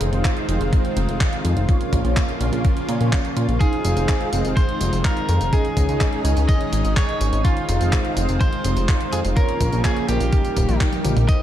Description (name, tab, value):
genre	italo disco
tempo	125 BPM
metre	4/4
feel	straight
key	F minor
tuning	A4 = 442 Hz
part	lush unison pad	sustained chords	0.0-11.4 s	Db3 to Ab4	-26 LUFS	equal	chorus
part	mellow synth brass	stabs	0.0-11.4 s	G3 to F5	-28 LUFS	right 2 dB	chorus, phaser, digital delay
part	chorused synth bass	bass	0.0-11.3 s	Eb1 to Bb2	-21 LUFS	equal	none
part	clean 12-bit digital drum machine	drums	0.0-11.4 s	handclaps, hi-hat, tambourine, toms	-28 LUFS	equal	high-pass filter on hats, high-pass filter on cymbals, high-pass filter on snare, high-pass filter on perc, high-pass filter on toms, high-pass filter on room
part	electronic kick drum	drums	0.2-11.4 s	none	-20 LUFS	equal	none
part	lightly driven lead guitar	melody	3.6-11.4 s	F4 to Eb5	-27 LUFS	equal	digital delay
part	riser	sound effects	11.4 s	none	barely audible	none	none
room	light reverb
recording	dark, warm production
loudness	-17 LUFS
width	side -11 dB against mid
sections	0.0-11.3 A section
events	drum fill 10.9-11.3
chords	0.0 Fm7; 1.7 Bbm; 3.6 Fm7; 5.5 Dbsus2; 7.4 Fm7; 9.4 Bbm; 10.3 Eb